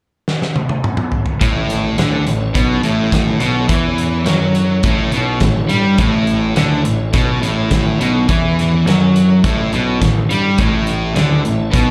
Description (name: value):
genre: classic rock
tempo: 104 BPM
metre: 4/4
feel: straight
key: A mixolydian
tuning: A4 = 440 Hz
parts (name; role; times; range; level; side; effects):
- big rock drum kit; drums; 0.3-11.9 s; hi-hat, kick drum, snare drum, toms; -20 LUFS; equal; none
- tonewheel organ; sustained chords; 1.4-11.9 s; C#4 to C#5; -30 LUFS; equal; none
- overdriven semi-hollow guitar; riff; 1.4-11.9 s; A2 to G3; -21 LUFS; equal; none
- sludgy distorted guitar; riff; 1.4-11.9 s; A2 to G3; -21 LUFS; equal; overdrive
- fuzz picked electric bass; bass; 1.4-11.9 s; A1 to G2; -22 LUFS; equal; overdrive
room: light reverb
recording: live gig heard through the venue's PA, club reverb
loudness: -15 LUFS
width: mono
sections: 0.0-1.4 A section; 1.4-11.9 B section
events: drum fill 0.3-1.4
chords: 0.0 N.C.; 1.4 A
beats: 0.26 0.83 | 1.40 1.97 2.54 3.12 | 3.69 4.26 4.84 5.41 | 5.98 6.56 7.13 7.71 | 8.28 8.86 9.43 10.01 | 10.58 11.16 11.73